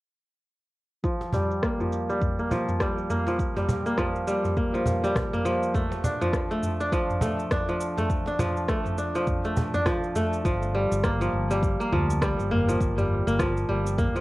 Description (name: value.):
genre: organic downtempo.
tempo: 102 BPM.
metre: 4/4.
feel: swing 59% on 16ths.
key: G minor.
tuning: A4 = 440 Hz.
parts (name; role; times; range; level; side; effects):
kora; arpeggios; 1.0-14.2 s; F3 to D4; -26 LUFS; equal; low-pass filter, cassette tape, analog delay.
deep house drum kit; drums; 1.0-14.2 s; rim click, shaker, toms; -31 LUFS; equal; low-pass filter on perc, low-pass filter on toms, low-pass filter on snare, low-pass filter on room.
electronic kick drum; drums; 1.0-14.1 s; none; -29 LUFS; equal; none.
cajon; percussion; 1.2-10.0 s; none; -31 LUFS; right 1 dB; none.
mellow fretless electric bass; bass; 10.4-14.1 s; G1 to D2; -27 LUFS; equal; none.
room: moderate studio reverb, RT60 0.6 s.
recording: home recording on cassette.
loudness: -23 LUFS.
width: side -18 dB against mid.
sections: 1.0-10.5 A section; 10.5-14.2 B section.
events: filter sweep on kora 1.0-10.5.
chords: 1.0 Gm7; 5.7 Dm; 10.5 Gm7.